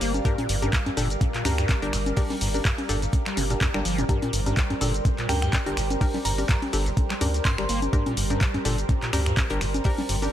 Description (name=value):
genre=acid house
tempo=125 BPM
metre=4/4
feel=swing 55% on 16ths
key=G minor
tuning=A4 = 440 Hz
part: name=lush unison pad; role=sustained chords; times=0.0-10.3 s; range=G3 to F5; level=-34 LUFS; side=right 1 dB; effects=chorus, phaser, sidechain pumping
part: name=acid bass, square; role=riff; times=0.0-10.2 s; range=G1 to Bb3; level=-30 LUFS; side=equal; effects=overdrive, ensemble chorus, sidechain pumping, tape echo
part: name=saturated sub bass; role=bass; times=0.0-10.3 s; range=G1 to D2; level=-28 LUFS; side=equal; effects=sidechain pumping
part: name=cloth-damped thuddy drum kit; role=drums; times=0.0-10.2 s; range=hi-hat, shaker, snare drum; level=-43 LUFS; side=left 1 dB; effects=none
part: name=punchy analog drum machine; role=drums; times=0.0-10.3 s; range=congas, finger snaps, handclaps, hi-hat, shaker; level=-28 LUFS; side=left 1 dB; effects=none
part: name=ethereal airy pad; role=texture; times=0.0-10.3 s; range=G4 to D6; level=-35 LUFS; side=right 1 dB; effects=ensemble chorus, built-in reverb, phaser, sidechain pumping
part: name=filtered dub chord stab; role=stabs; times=0.3-10.3 s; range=D4 to Bb4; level=-32 LUFS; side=left 3 dB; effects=chorus, vintage 12-bit sampler grit, tape echo
part: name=electronic kick drum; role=drums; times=0.3-10.0 s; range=none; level=-24 LUFS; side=equal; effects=none
part: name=glassy synth bell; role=melody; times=5.3-7.9 s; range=G5 to C6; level=-35 LUFS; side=right 3 dB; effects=chorus, tape echo
room=digital ambience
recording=none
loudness=-22 LUFS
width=side -11 dB against mid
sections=0.0-10.3 A section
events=none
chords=0.0 Gm